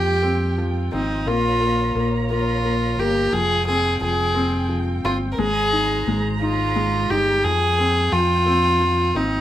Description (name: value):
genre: pop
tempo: 58 BPM (dotted quarters)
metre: 6/8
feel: straight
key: F minor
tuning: A4 = 442 Hz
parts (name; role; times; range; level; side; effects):
- warm violin; melody; 0.0-9.4 s; Eb4 to Bb4; -20 LUFS; equal; none
- clear upright piano; accompaniment; 0.0-9.4 s; F3 to Eb4; -24 LUFS; left 2 dB; none
- warm studio string section; sustained chords; 0.0-9.4 s; Ab3 to Bb5; -32 LUFS; right 4 dB; none
- fingered electric bass; bass; 0.0-9.4 s; F1 to F2; -24 LUFS; equal; none
room: wet small room reverb, RT60 0.5 s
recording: rough home demo mix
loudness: -18 LUFS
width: side -12 dB against mid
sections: 0.0-9.4 A section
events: none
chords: 0.0 Fmadd9; 1.3 Bbm; 3.3 Fmadd9; 5.4 Abadd9; 7.4 Fmadd9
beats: 0.23 | 1.26 2.29 | 3.33 4.36 | 5.38 6.41 | 7.44 8.47